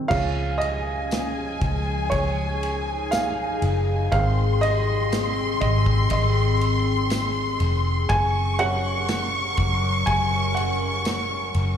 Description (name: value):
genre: pop ballad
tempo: 60 BPM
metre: 4/4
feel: straight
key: Db major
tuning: A4 = 440 Hz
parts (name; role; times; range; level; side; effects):
- warm upright piano; accompaniment; 0.0-11.8 s; Eb3 to Ab5; -27 LUFS; right 3 dB; slapback echo
- rich studio violin section; second line; 0.1-11.8 s; Ab5 to Db6; -28 LUFS; equal; slapback echo
- glassy FM pad; sustained chords; 0.8-11.8 s; Eb3 to Bb4; -29 LUFS; left 3 dB; ensemble chorus, built-in reverb
- vintage muted fingered electric bass; bass; 0.1-11.8 s; F1 to Db2; -24 LUFS; equal; none
- loose indie drum kit; drums; 0.1-11.8 s; crash cymbal, kick drum, ride cymbal, snare drum; -31 LUFS; equal; none
- tambourine; percussion; 1.1-11.3 s; none; -40 LUFS; left 4 dB; none
room: light reverb, small room ambience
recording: live gig heard through the venue's PA, club reverb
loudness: -20 LUFS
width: side -8 dB against mid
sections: 0.1-11.8 A section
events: upright piano solo 0.1-11.8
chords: 0.1 Db; 4.1 Ab; 8.1 Gb